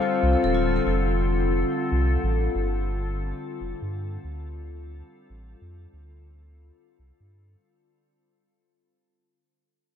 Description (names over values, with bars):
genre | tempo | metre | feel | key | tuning
IDM | 142 BPM | 4/4 | straight | unclear | A4 = 440 Hz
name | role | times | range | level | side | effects
glassy FM pad | sustained chords | 0.0-7.6 s | D3 to A4 | -27 LUFS | left 3 dB | ensemble chorus, built-in reverb
vibraphone with medium mallets | arpeggios | 0.0-0.9 s | F4 to F5 | -27 LUFS | left 3 dB | ping-pong delay
warm sub bass | bass | 0.2-7.6 s | D1 to G2 | -26 LUFS | equal | none
room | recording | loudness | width
moderate lush hall reverb, RT60 2.6 s | dreamy mix soaked in reverb | -22 LUFS | side -8 dB against mid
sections
0.0-7.6 A section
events
fade-out 0.0-7.6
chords
0.0 Dm7; 0.9 F; 4.2 Dm7